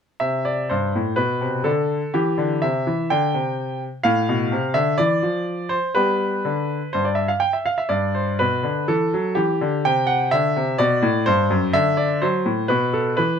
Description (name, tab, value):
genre	classical-period piano sonatina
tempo	125 BPM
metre	4/4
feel	rubato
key	C major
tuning	A4 = 441 Hz
part	bright grand piano	solo	0.2-13.4 s	F#2 to G5	-18 LUFS	equal	none
room	light reverb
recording	close, detailed microphones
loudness	-18 LUFS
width	side -7 dB against mid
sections	0.2-13.4 A section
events	none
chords	0.2 C5; 1.2 Bm7; 2.1 C; 4.0 F/A; 6.0 G; 7.9 Em/G; 9.8 C; 11.8 D; 12.7 Asus2/B